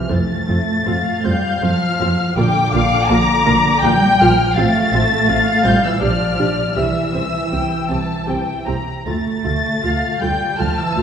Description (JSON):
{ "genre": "classical, slow romantic movement for string orchestra", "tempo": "80 BPM", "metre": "3/4", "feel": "rubato", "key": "F major", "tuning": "A4 = 442 Hz", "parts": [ { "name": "muted symphonic violin section", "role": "melody", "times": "0.0-11.0 s", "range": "D6 to A6", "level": "-22 LUFS", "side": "left 2 dB", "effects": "none" }, { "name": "muted symphonic cello section", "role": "bass", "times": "0.0-11.0 s", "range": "D3 to A3", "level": "-21 LUFS", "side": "right 2 dB", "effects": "none" }, { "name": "muted symphonic viola section", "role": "accompaniment", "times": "0.1-11.0 s", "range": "A3 to G4", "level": "-23 LUFS", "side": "left 1 dB", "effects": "none" }, { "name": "muted symphonic double bass section", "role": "bass", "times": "0.1-11.0 s", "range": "A1 to F2", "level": "-21 LUFS", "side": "right 2 dB", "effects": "none" }, { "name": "muted symphonic violin section", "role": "second line", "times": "0.9-11.0 s", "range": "D5 to Bb5", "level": "-19 LUFS", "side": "left 2 dB", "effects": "none" } ], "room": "wet scoring stage reverb, RT60 1.8 s", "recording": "heard from further back in the room", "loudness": "-14 LUFS", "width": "side -8 dB against mid", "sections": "0.1-11.0 A section", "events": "none", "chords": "0.1 F; 2.4 Bb; 4.6 F/A; 6.0 N.C.; 6.8 C; 9.1 Dm", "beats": "| 0.11 0.88 1.63 | 2.38 3.11 3.84 | 4.58 5.29 6.03 | 6.78 7.54 8.29 | 9.07 9.84 10.59" }